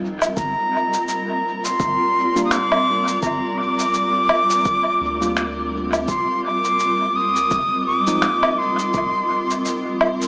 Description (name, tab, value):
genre	ambient dub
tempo	84 BPM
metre	4/4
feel	swing 58% on 16ths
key	unclear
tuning	A4 = 437 Hz
part	granular cloud pad	sustained chords	0.0-10.3 s	G3 to Eb5	-28 LUFS	equal	built-in reverb
part	warm sub bass	bass	0.0-9.1 s	Eb1 to D2	-36 LUFS	equal	none
part	electronic cabasa, woodblock and finger snaps	drums	0.2-10.3 s	none	-27 LUFS	equal	overdrive, dub echo
part	bright reedy silver concert flute	melody	0.4-10.0 s	Bb5 to Eb6	-22 LUFS	equal	dub echo
part	electronic kick drum	drums	0.4-9.1 s	none	-29 LUFS	equal	none
part	mellow tine electric piano	stabs	2.4-8.3 s	F3 to F4	-30 LUFS	equal	dub echo
room	moderate echo chamber reverb, RT60 2.2 s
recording	small speaker sound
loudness	-20 LUFS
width	mono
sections	0.0-10.3 A section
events	none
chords	0.4 Gm7; 6.1 F7(no3)